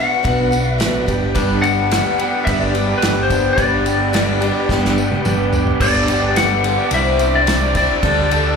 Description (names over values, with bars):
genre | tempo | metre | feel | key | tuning
folk rock and heartland rock | 108 BPM | 4/4 | straight | unclear | A4 = 440 Hz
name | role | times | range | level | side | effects
lightly driven lead guitar | melody | 0.0-8.6 s | B4 to F#5 | -19 LUFS | left 3 dB | slapback echo, analog delay
picked twelve-string acoustic guitar | accompaniment | 0.0-8.6 s | G2 to A4 | -21 LUFS | left 2 dB | slapback echo
tonewheel organ | sustained chords | 0.0-8.6 s | E4 to G5 | -28 LUFS | right 1 dB | chorus vibrato, stopped rotary speaker
unplugged drum kit | drums | 0.2-8.4 s | crash cymbal, kick drum, ride cymbal, snare drum, toms | -22 LUFS | right 1 dB | none
fingered electric bass | bass | 0.3-8.6 s | G1 to D2 | -21 LUFS | right 1 dB | none
tambourine | percussion | 0.3-8.4 s | none | -36 LUFS | right 3 dB | none
raw garage guitar | riff | 1.4-8.6 s | G2 to B4 | -22 LUFS | right 2 dB | overdrive, slapback echo
room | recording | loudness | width
light reverb, studio ambience | live gig heard through the venue's PA, club reverb | -14 LUFS | side -6 dB against mid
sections
0.0-5.8 A section; 5.8-8.6 B section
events
drum fill 4.7-5.8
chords
0.0 Bm; 1.1 G; 6.9 Cadd9; 8.0 Dsus4